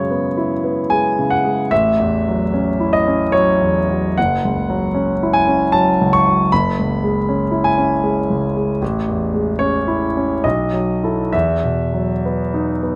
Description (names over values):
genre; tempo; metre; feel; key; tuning
classical, impressionist solo piano; 66-80 BPM; 3/4; rubato; E major; A4 = 440 Hz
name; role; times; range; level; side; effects
clear concert grand piano; solo; 0.0-13.0 s; F#1 to C#6; -17 LUFS; equal; none
room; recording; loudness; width
light reverb; close, detailed microphones; -17 LUFS; mono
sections
0.0-13.0 A section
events
none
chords
0.0 F#9sus4; 1.7 A6; 4.2 F#5; 6.5 E6/F#; 8.8 Amaj7; 10.4 B7sus4; 11.3 Esus2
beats
0.11 0.91 | 1.71 2.52 3.32 | 4.17 4.96 5.73 | 6.51 7.27 8.04 | 8.81 9.61 10.45 | 11.34 12.24